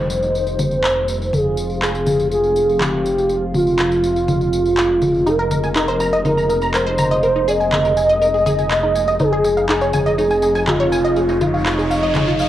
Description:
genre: melodic techno.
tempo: 122 BPM.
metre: 4/4.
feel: straight.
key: F minor.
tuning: A4 = 441 Hz.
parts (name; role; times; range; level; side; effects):
expressive portamento lead; melody; 0.0-12.5 s; Eb4 to Eb5; -17 LUFS; right 1 dB; lush chorus, cassette tape, analog delay.
lush unison pad; sustained chords; 0.0-12.5 s; C3 to Db5; -28 LUFS; equal; chorus, cassette tape.
swelling detuned saw bass; bass; 0.0-12.5 s; F1; -25 LUFS; equal; none.
analog drone; drone; 0.0-12.5 s; F2 to C3; -30 LUFS; equal; none.
downlifter and riser; sound effects; 0.0-1.3, 10.5-12.5 s; none; -32 LUFS; equal; none.
tambourine; percussion; 0.1-12.5 s; none; -35 LUFS; left 2 dB; none.
electronic congas and handclaps; drums; 0.6-12.2 s; none; -22 LUFS; left 1 dB; small room ambience, cassette tape.
wide unison pluck; arpeggios; 5.3-12.5 s; Eb4 to Bb5; -21 LUFS; equal; cassette tape, tape echo.
room: moderate spring reverb, RT60 1.6 s, digital ambience.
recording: home recording on cassette.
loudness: -15 LUFS.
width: side -12 dB against mid.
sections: 0.0-12.5 A section.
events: filter sweep on analog synth lead 0.0-12.5; filter sweep on analog synth pad 0.0-12.5; riser 10.5-12.5.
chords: 0.0 Ebadd9/F; 1.3 Fm; 5.3 Abadd9/F; 9.2 Dbadd9/F.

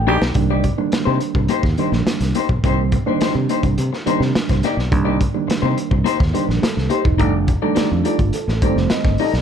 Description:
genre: funk.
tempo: 105 BPM.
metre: 4/4.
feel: straight.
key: C dorian.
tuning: A4 = 440 Hz.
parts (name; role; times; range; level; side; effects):
reed electric piano; stabs; 0.0-9.4 s; D3 to G5; -22 LUFS; right 6 dB; overdrive, tape echo.
fingered electric bass; bass; 0.0-9.4 s; E1 to C3; -20 LUFS; equal; none.
clean electric guitar; accompaniment; 0.1-9.4 s; Bb3 to Eb5; -22 LUFS; left 6 dB; none.
crunchy breakbeat drum kit; drums; 0.2-9.4 s; hi-hat, kick drum, snare drum; -21 LUFS; equal; none.
room: light reverb.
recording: dark, warm production.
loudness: -16 LUFS.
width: side -8 dB against mid.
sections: 0.4-9.4 A section.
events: drum fill 0.0-0.4; reed electric piano fill 7.8-9.4.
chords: 0.4 Cm7; 7.2 F13.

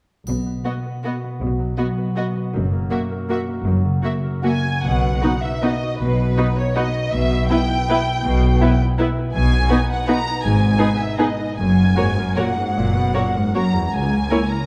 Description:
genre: classical, orchestral ballroom waltz.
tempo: 146-178 BPM.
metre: 3/4.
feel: rubato.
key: B major.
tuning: A4 = 441 Hz.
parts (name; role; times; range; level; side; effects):
concert harp; arpeggios; 0.3-14.7 s; F#2 to F#5; -27 LUFS; equal; none.
rich studio cello section; bass; 0.3-14.2 s; C#2 to B2; -25 LUFS; equal; none.
warm studio double bass section; bass; 0.3-14.2 s; F#1 to C#2; -25 LUFS; equal; none.
triangle; percussion; 0.3-1.0 s; none; -44 LUFS; equal; none.
warm studio violin section; second line; 0.6-14.4 s; E4 to C#5; -30 LUFS; equal; none.
warm studio violin section; melody; 0.7-14.7 s; B4 to A#5; -28 LUFS; equal; none.
rich studio viola section; accompaniment; 0.7-14.4 s; A#3 to F#4; -26 LUFS; equal; none.
room: moderate concert hall reverb, RT60 1.7 s.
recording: dark, warm production.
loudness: -20 LUFS.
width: mono.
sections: 0.3-4.8 A section; 4.8-14.7 B section.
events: none.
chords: 0.3 B5; 2.5 F#; 4.8 B; 7.1 Em/B; 9.3 B; 10.4 G#m; 11.6 F#; 13.9 A#m7b5/C#.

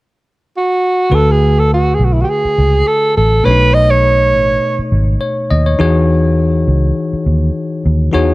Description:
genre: soul.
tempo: 102 BPM.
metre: 4/4.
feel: swing 54% on 16ths.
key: unclear.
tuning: A4 = 435 Hz.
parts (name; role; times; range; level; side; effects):
warm alto saxophone; melody; 0.6-4.8 s; E4 to D#5; -13 LUFS; right 2 dB; none.
bell-like tine electric piano; accompaniment; 1.1-8.3 s; B2 to D#5; -16 LUFS; left 2 dB; none.
vintage muted fingered electric bass; bass; 1.1-8.3 s; G#1 to E2; -13 LUFS; equal; none.
room: light reverb.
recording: none.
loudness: -10 LUFS.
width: side -20 dB against mid.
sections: 0.0-1.1 A section; 1.1-8.3 B section.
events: none.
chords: 0.0 N.C.; 1.1 D6; 3.5 B9; 5.8 Emaj13.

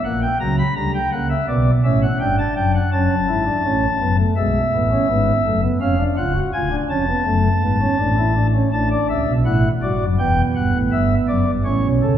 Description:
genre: classical, baroque-style 3-part fugue for pipe organ.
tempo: 83 BPM.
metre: 4/4.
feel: straight.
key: D major from 8.7 s.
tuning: A4 = 439 Hz.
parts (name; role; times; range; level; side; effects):
pipe organ, flutes; solo; 0.0-12.2 s; C#1 to B5; -16 LUFS; equal; none.
room: wet scoring stage reverb, RT60 1.9 s.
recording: heard from further back in the room.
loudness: -16 LUFS.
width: side -10 dB against mid.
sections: 0.0-8.7 A section; 8.7-12.2 B section.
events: none.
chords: 0.0 F#7/A#; 1.5 Bm; 2.9 F#m; 4.4 F#m11; 5.8 C#7; 7.3 F#m; 8.7 D/A; 10.2 Em7; 11.6 A.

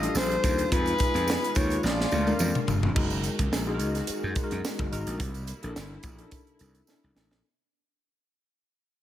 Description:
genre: polished 1980s jazz-funk pop.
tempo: 107 BPM.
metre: 4/4.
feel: swing 54% on 16ths.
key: unclear.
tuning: A4 = 438 Hz.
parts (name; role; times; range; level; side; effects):
breathy soprano saxophone; melody; 0.0-2.6 s; Cb5 to Eb5; -29 LUFS; left 2 dB; none.
warm horn section; second line; 0.0-2.7 s; Bb3 to Ab4; -37 LUFS; equal; none.
tine electric piano; accompaniment; 0.0-7.5 s; F3 to Cb5; -33 LUFS; left 2 dB; medium tremolo, analog chorus.
rich studio string section; sustained chords; 0.0-7.4 s; D3 to Gb4; -39 LUFS; equal; none.
gritty slap bass; bass; 0.0-7.4 s; F1 to Gb2; -30 LUFS; equal; overdrive.
crisp fusion drum kit; drums; 0.0-7.4 s; crash cymbal, hi-hat, kick drum, snare drum, toms; -29 LUFS; equal; gated reverb.
tambourine; percussion; 0.1-7.3 s; none; -41 LUFS; right 7 dB; none.
room: light reverb, small room ambience.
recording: none.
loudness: -24 LUFS.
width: side -12 dB against mid.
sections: 0.0-3.0 A section; 3.0-7.4 B section.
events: drum fill 1.8-3.0, 6.9-7.4; fade-out 3.0-7.4.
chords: 0.0 Ebmaj9#11; 0.7 Fm7b5; 1.8 Bb7; 3.0 Gb69; 5.2 C13.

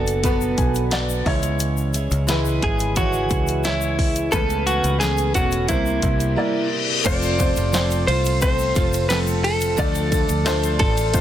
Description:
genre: piano-driven pop.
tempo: 88 BPM.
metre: 4/4.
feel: straight.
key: unclear.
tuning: A4 = 441 Hz.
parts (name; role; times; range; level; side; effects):
direct-recorded clean electric guitar; melody; 0.0-11.2 s; E4 to D5; -23 LUFS; equal; none.
warm upright piano; accompaniment; 0.0-11.2 s; B2 to G#5; -25 LUFS; left 2 dB; none.
picked steel-string acoustic guitar; riff; 0.0-11.2 s; B2 to A4; -28 LUFS; right 7 dB; none.
fingered electric bass; bass; 0.0-11.2 s; E1 to D2; -23 LUFS; equal; none.
house drum kit; drums; 0.1-11.2 s; crash cymbal, handclaps, hi-hat, kick drum, ride cymbal, snare drum; -24 LUFS; equal; none.
egg shaker; percussion; 0.1-11.2 s; none; -34 LUFS; left 13 dB; none.
reverse cymbal; sound effects; 6.4-7.1 s; none; -26 LUFS; left 8 dB; none.
room: little or no reverb.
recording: dense, heavily limited modern master.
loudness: -18 LUFS.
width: side -11 dB against mid.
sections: 0.0-7.1 A section; 7.1-11.2 B section.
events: upright piano fill 0.2-1.6; reverse cymbal 6.4-7.1.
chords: 0.0 Bm; 1.3 C#m; 4.3 Aadd9/C#; 5.7 C7; 7.1 F; 9.8 Dm.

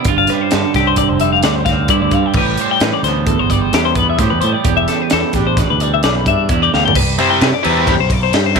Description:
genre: math rock and midwest emo.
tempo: 131 BPM.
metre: 5/4.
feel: straight.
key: A minor.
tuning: A4 = 440 Hz.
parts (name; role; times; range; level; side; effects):
twangy electric guitar; accompaniment; 0.0-8.6 s; E2 to G4; -19 LUFS; right 15 dB; spring reverb.
twelve-string electric guitar; arpeggios; 0.0-8.6 s; G4 to G5; -17 LUFS; left 16 dB; wide subtle chorus.
growling fingered electric bass; bass; 0.0-8.6 s; E1 to C3; -18 LUFS; equal; overdrive.
crisp fusion drum kit; drums; 0.0-8.6 s; crash cymbal, hi-hat, kick drum, ride cymbal, snare drum, toms; -18 LUFS; equal; none.
overdriven electric guitar; riff; 7.2-8.6 s; C3 to E4; -15 LUFS; right 1 dB; none.
room: light reverb, small room ambience.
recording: 1960s-style stereo with parts hard left and right.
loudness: -12 LUFS.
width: side -5 dB against mid.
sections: 0.0-7.0 A section; 7.0-8.6 B section.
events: drum fill 6.7.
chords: 0.1 G7sus4; 2.4 Am9; 4.7 Em7; 7.0 Cmaj9.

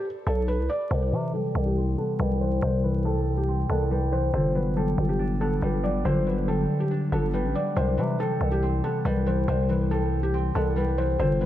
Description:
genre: hip hop, trap.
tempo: 140 BPM.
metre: 4/4.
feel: half-time.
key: unclear.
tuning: A4 = 439 Hz.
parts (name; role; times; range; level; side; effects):
felt-muted upright piano; melody; 0.0-11.5 s; G4 to D5; -29 LUFS; right 1 dB; low-pass filter, ping-pong delay.
growling 808-style bass; bass; 0.3-11.5 s; G1 to C3; -26 LUFS; equal; none.
concert harp; accompaniment; 0.9-11.5 s; C3 to D4; -26 LUFS; left 2 dB; low-pass filter.
room: moderate plate reverb, RT60 3.5 s.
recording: dreamy mix soaked in reverb, vinyl crackle.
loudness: -23 LUFS.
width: side -12 dB against mid.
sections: 0.9-7.8 A section; 7.8-11.5 B section.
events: filter sweep 0.9-7.8.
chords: 0.0 Bm7; 0.9 Cmaj7; 4.3 Gmaj7; 7.8 Cmaj7.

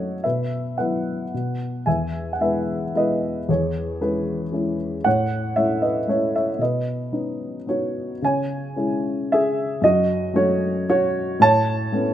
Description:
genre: classical, lyrical solo piano.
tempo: 114 BPM.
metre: 3/4.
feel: rubato.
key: C# minor from 8.2 s.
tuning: A4 = 439 Hz.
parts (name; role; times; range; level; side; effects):
dark upright piano; solo; 0.0-12.1 s; E2 to A5; -20 LUFS; equal; none.
room: moderate recital hall reverb, RT60 1.6 s.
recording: close, detailed microphones.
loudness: -20 LUFS.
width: side -11 dB against mid.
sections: 0.0-8.2 A section; 8.2-12.1 B section.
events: none.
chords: 0.2 Bsus4; 1.3 N.C.; 1.9 E; 3.5 C#m/E; 5.1 A; 6.6 Badd9; 8.2 C#m; 9.8 F#m; 11.4 Aadd9.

